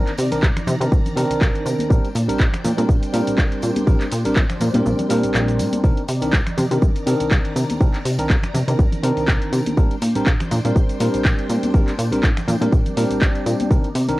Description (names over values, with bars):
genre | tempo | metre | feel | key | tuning
filtered disco house | 122 BPM | 4/4 | swing 55% on 16ths | unclear | A4 = 440 Hz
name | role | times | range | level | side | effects
bell-like tine electric piano | accompaniment | 0.0-14.2 s | Eb3 to Bb4 | -22 LUFS | equal | phaser, sidechain pumping, cassette tape
phased string machine | sustained chords | 0.0-14.2 s | Eb3 to Bb5 | -33 LUFS | equal | ensemble chorus, phaser, sidechain pumping, cassette tape
plucky analog bass | bass | 0.0-14.2 s | Bb1 to C3 | -21 LUFS | equal | sidechain pumping
punchy analog drum machine | drums | 0.1-14.2 s | finger snaps, handclaps, hi-hat, shaker | -27 LUFS | equal | sidechain pumping on perc, cassette tape, sidechain pumping on hats
tambourine and congas | percussion | 0.1-14.2 s | none | -29 LUFS | equal | sidechain pumping on perc
electronic kick drum | drums | 0.4-13.8 s | none | -17 LUFS | equal | cassette tape
room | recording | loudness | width
little or no reverb | home recording on cassette | -16 LUFS | side -18 dB against mid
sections
0.0-14.2 A section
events
kick drops out 4.9-5.8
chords
0.0 Cm9; 1.9 Bb69; 5.8 Cm9; 9.8 Bb69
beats
0.43 0.92 1.41 | 1.90 2.40 2.89 3.38 | 3.87 4.36 4.86 5.35 | 5.84 6.33 6.82 7.31 | 7.80 8.30 8.79 9.28 | 9.77 10.26 10.76 11.25 | 11.74 12.23 12.72 13.21 | 13.71